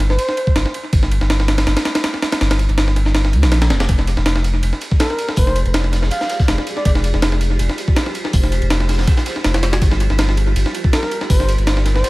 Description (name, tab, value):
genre	drum and bass, jungle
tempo	162 BPM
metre	4/4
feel	swing 54% on 16ths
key	F dorian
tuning	A4 = 440 Hz
part	saturated sub bass	bass	0.0-12.0 s	F1 to D2	-16 LUFS	equal	none
part	breakbeat sampler-style drum kit	drums	0.0-12.1 s	hi-hat, kick drum, ride cymbal, snare drum	-17 LUFS	equal	studio reverb, tape echo
part	trumpet with bucket mute	melody	0.1-0.6, 5.0-6.9, 10.9-12.1 s	Bb4 to F5	-23 LUFS	equal	tape echo
part	granular cloud pad	sustained chords	4.8-12.1 s	F4 to D5	-28 LUFS	right 1 dB	built-in reverb
part	crunchy breakbeat drum kit	drums	3.9-12.1 s	hi-hat, snare drum	-33 LUFS	left 2 dB	none
room	studio reverb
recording	echo-heavy mix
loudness	-14 LUFS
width	side -20 dB against mid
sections	0.0-12.1 A section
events	none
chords	0.0 N.C.; 3.9 Fm69; 9.8 Gm7